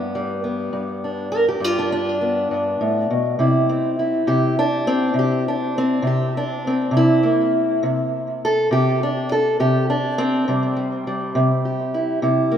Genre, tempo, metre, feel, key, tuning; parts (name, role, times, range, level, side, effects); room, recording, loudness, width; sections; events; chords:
acoustic country blues, solo or duo; 68 BPM (dotted quarters); 12/8; straight; A4 = 436 Hz
fingerpicked steel-string acoustic guitar; solo; 0.0-12.6 s; G2 to Bb4; -18 LUFS; equal; tape echo
wet lush hall reverb, RT60 2.4 s; rough home demo mix; -18 LUFS; side -9 dB against mid
0.0-12.6 A section
0.0 G7; 3.4 C7